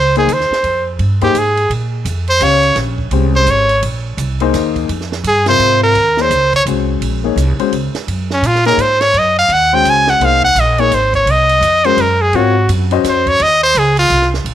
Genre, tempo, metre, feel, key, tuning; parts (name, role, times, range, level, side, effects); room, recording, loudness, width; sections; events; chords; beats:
modal jazz; 169 BPM; 3/4; swing 62% on 8ths; Eb dorian from 6.0 s; A4 = 440 Hz
brilliant trumpet; melody; 0.0-14.3 s; Db4 to Ab5; -12 LUFS; right 1 dB
upright bass; bass; 0.0-14.5 s; Ab1 to Bb2; -17 LUFS; right 1 dB
warm baby grand piano; accompaniment; 0.2-13.4 s; C3 to F5; -18 LUFS; left 12 dB
compact cocktail drum kit; drums; 0.2-14.5 s; hi-hat, kick drum, ride cymbal, snare drum; -26 LUFS; right 7 dB
light reverb, studio ambience; 1960s-style stereo with parts hard left and right; -11 LUFS; side -11 dB against mid
0.0-6.0 A section; 6.0-14.5 A section
trumpet solo 0.0-14.5
0.0 Fm; 1.7 Bbm9; 3.8 Fm/Bb; 6.0 Ebm7; 10.2 Ab
0.29 | 0.64 0.99 1.35 | 1.70 2.06 2.41 | 2.77 3.12 3.47 | 3.83 4.18 4.54 | 4.89 5.25 5.60 | 5.95 6.31 6.66 | 7.01 7.37 7.72 | 8.08 8.43 8.79 | 9.14 9.49 9.85 | 10.20 10.56 10.91 | 11.27 11.62 11.97 | 12.33 12.68 13.04 | 13.39 13.74 14.10 | 14.45